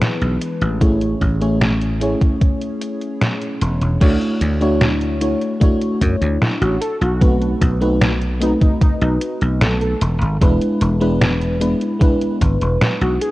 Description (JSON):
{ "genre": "vaporwave", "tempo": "75 BPM", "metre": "4/4", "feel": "straight", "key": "unclear", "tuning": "A4 = 440 Hz", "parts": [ { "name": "FM electric piano with soft pad layer", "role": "accompaniment", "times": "0.0-13.3 s", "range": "G#3 to C#5", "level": "-20 LUFS", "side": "equal", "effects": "wide subtle chorus, tape echo" }, { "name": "warbly tape-like pad", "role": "sustained chords", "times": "0.0-4.0 s", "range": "E3 to B4", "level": "-30 LUFS", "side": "equal", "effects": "chorus, built-in reverb" }, { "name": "detuned 8-bit digital drum machine", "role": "drums", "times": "0.0-13.3 s", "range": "crash cymbal, hi-hat, snare drum", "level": "-20 LUFS", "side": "equal", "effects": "studio reverb" }, { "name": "dry thumbed slap bass", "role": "bass", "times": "0.2-13.2 s", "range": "E1 to F#2", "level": "-18 LUFS", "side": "equal", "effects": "none" }, { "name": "electronic kick drum", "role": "drums", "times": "0.8-12.6 s", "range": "none", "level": "-15 LUFS", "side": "equal", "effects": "overdrive, studio reverb" }, { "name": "warm velvety synth lead", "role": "melody", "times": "6.6-13.3 s", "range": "D#4 to A4", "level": "-24 LUFS", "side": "equal", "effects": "chorus, cassette tape, tape echo" } ], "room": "light reverb", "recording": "worn, warbling old tape, cassette tape, warbly pitch drift", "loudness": "-15 LUFS", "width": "side -18 dB against mid", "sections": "0.0-4.0 A section; 4.0-13.3 B section", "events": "none", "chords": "0.0 E7; 0.8 Amaj7; 4.0 Dmaj9; 6.8 B7b9; 10.0 E7" }